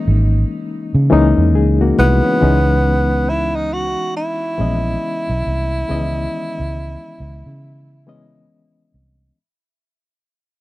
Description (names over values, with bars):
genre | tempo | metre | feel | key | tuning
R&B, neo-soul | 69 BPM | 4/4 | swing 60% on 16ths | C# dorian | A4 = 440 Hz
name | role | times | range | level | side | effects
breathy tenor saxophone | melody | 0.0-8.5 s | B3 to F#4 | -20 LUFS | right 1 dB | tape echo
barky reed electric piano | accompaniment | 0.0-9.4 s | D#3 to D#5 | -19 LUFS | left 4 dB | fast tremolo
vintage muted fingered electric bass | bass | 0.1-9.3 s | G#1 to C#3 | -16 LUFS | right 1 dB | none
room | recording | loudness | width
little or no reverb | dry, close 1970s-style studio recording | -14 LUFS | side -17 dB against mid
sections
0.0-2.4 A section; 2.4-9.4 B section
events
fade-out 2.4-9.4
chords
0.0 C#m69; 2.4 C#m9